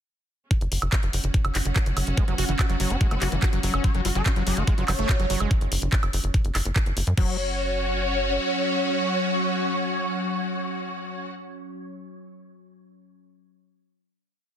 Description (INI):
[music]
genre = psychedelic trance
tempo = 144 BPM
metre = 4/4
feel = straight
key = unclear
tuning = A4 = 440 Hz
[part]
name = evolving wavetable pad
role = sustained chords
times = 1.2-11.3 s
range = F#3 to C#4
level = -32 LUFS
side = equal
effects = chorus, built-in reverb, sidechain pumping
[part]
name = drum and bass drum kit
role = drums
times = 0.5-7.3 s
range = crash cymbal, handclaps, hi-hat, woodblock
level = -29 LUFS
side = right 1 dB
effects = none
[part]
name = electronic kick drum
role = drums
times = 0.5-7.3 s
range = none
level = -22 LUFS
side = equal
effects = none
[part]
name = clear studio string section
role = texture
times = 0.5-11.3 s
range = C#4 to F#5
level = -32 LUFS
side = left 1 dB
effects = sidechain pumping
[part]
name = tight sequencer bass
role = bass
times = 0.6-8.4 s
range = F#1 to F#2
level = -26 LUFS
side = equal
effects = none
[part]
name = vowel-sweep wobble bass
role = second line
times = 2.2-3.4 s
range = B3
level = -43 LUFS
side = right 4 dB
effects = none
[part]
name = overdriven acid bass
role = riff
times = 2.2-7.4 s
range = E3 to F#4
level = -30 LUFS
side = moving between left 9 dB and right 11 dB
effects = distortion, auto-pan, sidechain pumping, digital delay
[part]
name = swarming rave lead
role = melody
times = 3.8-11.3 s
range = F#4 to C#5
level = -29 LUFS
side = equal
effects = chorus, phaser, sidechain pumping, dub echo
[sound]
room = digital ambience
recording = dense, heavily limited modern master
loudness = -22 LUFS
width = side -9 dB against mid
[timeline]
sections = 0.5-7.2 groove; 7.2-10.5 final chord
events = fade-in on string section 0.5-5.5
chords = 0.5 F#5